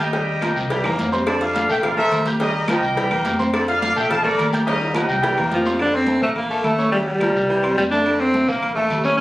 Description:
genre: latin, salsa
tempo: 212 BPM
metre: 4/4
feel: straight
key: F major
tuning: A4 = 440 Hz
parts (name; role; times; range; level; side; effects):
- clear trumpet section; melody; 0.0-5.6 s; A4 to A5; -22 LUFS; equal; plate reverb
- bright concert grand piano; accompaniment; 0.0-9.2 s; G3 to G6; -24 LUFS; left 1 dB; none
- hollow-body short-scale fingered electric bass; bass; 0.0-9.2 s; Bb1 to F2; -29 LUFS; equal; none
- agogo bells and timbales; percussion; 0.0-9.2 s; none; -30 LUFS; right 2 dB; none
- congas; percussion; 0.0-9.2 s; none; -28 LUFS; equal; none
- guiro; percussion; 0.0-9.2 s; none; -37 LUFS; right 1 dB; none
- clear baritone saxophone; second line; 0.1-9.2 s; Db3 to A3; -26 LUFS; equal; none
- cowbell; percussion; 0.1-5.7 s; none; -29 LUFS; left 2 dB; none
- claves; percussion; 0.4-9.0 s; none; -31 LUFS; equal; none
- clear alto saxophone; melody; 5.5-9.2 s; F3 to D4; -18 LUFS; equal; plate reverb
room: moderate studio reverb, RT60 0.7 s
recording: recorded on a phone in the room, club reverb, compression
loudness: -17 LUFS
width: side -16 dB against mid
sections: 0.0-5.8 A section; 5.8-9.2 B section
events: drum fill 0.8-1.3, 4.7-5.8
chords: 0.1 Eb7; 0.7 C7; 1.3 F6; 1.8 Bbmaj7; 2.4 Eb7; 3.0 C7; 3.5 F6; 4.1 Bbmaj7; 4.7 Eb7; 5.2 C7; 5.8 F6; 6.4 Bbmaj7(no3); 6.9 Eb7; 7.5 C; 8.1 F6; 8.6 Bbmaj7(no3)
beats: | 0.14 0.42 0.71 0.99 | 1.27 1.56 1.84 2.12 | 2.40 2.69 2.97 3.25 | 3.54 3.82 4.10 4.38 | 4.67 4.95 5.23 5.51 | 5.80 6.08 6.36 6.65 | 6.93 7.21 7.49 7.78 | 8.06 8.34 8.62 8.91 | 9.19

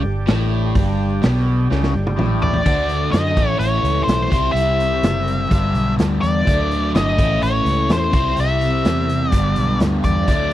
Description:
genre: blues rock power trio and southern rock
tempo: 126 BPM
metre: 4/4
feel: straight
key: unclear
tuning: A4 = 440 Hz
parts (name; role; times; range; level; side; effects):
- overdriven tonewheel organ; sustained chords; 0.0-2.6 s; G3 to G4; -29 LUFS; right 3 dB; slow rotary speaker
- crunchy overdriven guitar; riff; 0.0-10.5 s; G2 to F#4; -21 LUFS; equal; phaser
- vintage muted fingered electric bass; bass; 0.0-10.5 s; F#1 to F#2; -21 LUFS; equal; none
- raw garage drum kit; drums; 0.3-10.5 s; crash cymbal, hi-hat, kick drum, snare drum, toms; -21 LUFS; equal; none
- octave-fuzz lead guitar; melody; 2.4-10.5 s; C5 to E5; -21 LUFS; left 1 dB; wah, distortion
room: little or no reverb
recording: dry, close 1970s-style studio recording, vinyl crackle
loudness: -15 LUFS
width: side -13 dB against mid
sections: 0.0-2.7 A section; 2.7-10.5 B section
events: drum fill 1.7-2.7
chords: 0.0 G5; 2.7 D; 3.4 A; 4.3 C; 5.5 G; 6.5 D; 7.2 A; 8.1 C; 9.3 G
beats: 0.27 | 0.75 1.22 1.70 2.18 | 2.65 3.13 3.61 4.08 | 4.56 5.04 5.51 5.99 | 6.47 6.95 7.42 7.90 | 8.38 8.85 9.33 9.81 | 10.28

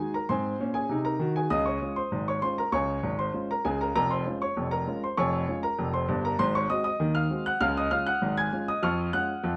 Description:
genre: ragtime piano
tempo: 98 BPM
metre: 2/4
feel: straight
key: Db major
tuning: A4 = 440 Hz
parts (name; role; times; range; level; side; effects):
- warm grand piano; solo; 0.0-9.6 s; F1 to Ab6; -28 LUFS; equal; none
room: moderate studio reverb, RT60 0.6 s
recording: none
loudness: -28 LUFS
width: mono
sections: 0.0-9.6 A section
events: none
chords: 0.0 Ab7; 1.5 Db; 4.0 Db/F; 6.4 Ab7; 7.6 Db; 8.8 Db/F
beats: | 0.29 0.90 | 1.51 2.12 | 2.74 3.35 | 3.96 4.57 | 5.17 5.79 | 6.39 7.00 | 7.61 8.22 | 8.83 9.44

